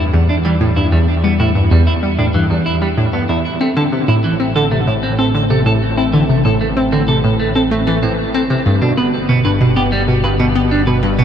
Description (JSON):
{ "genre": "ambient, sequencer-driven space music", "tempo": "95 BPM", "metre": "4/4", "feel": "straight", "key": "unclear", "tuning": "A4 = 441 Hz", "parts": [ { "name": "sweeping resonant pad", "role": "sustained chords", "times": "0.0-11.2 s", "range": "D3 to B4", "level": "-27 LUFS", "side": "equal", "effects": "none" }, { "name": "clean electric guitar", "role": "arpeggios", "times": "0.0-11.2 s", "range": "E3 to B4", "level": "-19 LUFS", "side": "right 1 dB", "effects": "auto-pan, tape echo" }, { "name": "analog pluck", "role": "riff", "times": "0.0-11.2 s", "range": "E2 to C4", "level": "-14 LUFS", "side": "equal", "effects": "chorus, tape echo" }, { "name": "analog drone", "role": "bass", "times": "0.0-11.2 s", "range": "G1 to E2", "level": "-20 LUFS", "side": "equal", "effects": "chorus" } ], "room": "moderate huge ambient reverb, RT60 7.6 s", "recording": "dreamy mix soaked in reverb", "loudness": "-12 LUFS", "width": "side -9 dB against mid", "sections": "0.0-11.2 A section", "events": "none", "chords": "0.0 Em7; 3.6 Am; 8.7 G" }